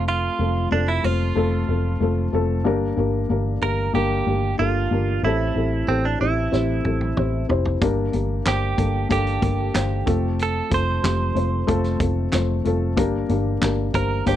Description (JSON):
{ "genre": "piano-driven pop", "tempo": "93 BPM", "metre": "4/4", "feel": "straight", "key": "G dorian", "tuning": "A4 = 440 Hz", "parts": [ { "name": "direct-recorded clean electric guitar", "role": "melody", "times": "0.0-14.4 s", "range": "C4 to C5", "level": "-25 LUFS", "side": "right 5 dB", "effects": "none" }, { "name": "felt-muted upright piano", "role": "accompaniment", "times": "0.0-14.4 s", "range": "G2 to C5", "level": "-23 LUFS", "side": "left 4 dB", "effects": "none" }, { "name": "vintage muted picked electric bass", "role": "bass", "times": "0.0-14.4 s", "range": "F1 to A1", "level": "-23 LUFS", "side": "right 1 dB", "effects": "none" }, { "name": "loose indie drum kit", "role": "drums", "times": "6.5-14.4 s", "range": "handclaps, hi-hat, kick drum, snare drum, toms", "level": "-26 LUFS", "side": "right 1 dB", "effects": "none" } ], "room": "little or no reverb", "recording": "dry, close 1970s-style studio recording", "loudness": "-19 LUFS", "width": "side -11 dB against mid", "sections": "0.0-14.4 A section", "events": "drum fill 6.5-7.8", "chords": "0.0 F; 2.7 Gm; 5.2 Am7; 7.8 Gm; 10.1 F; 13.0 Gm", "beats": "| 0.07 0.72 1.36 2.01 | 2.65 3.30 3.94 4.59 | 5.24 5.88 6.53 7.17 | 7.82 8.46 9.11 9.75 | 10.40 11.04 11.69 12.33 | 12.98 13.62 14.27" }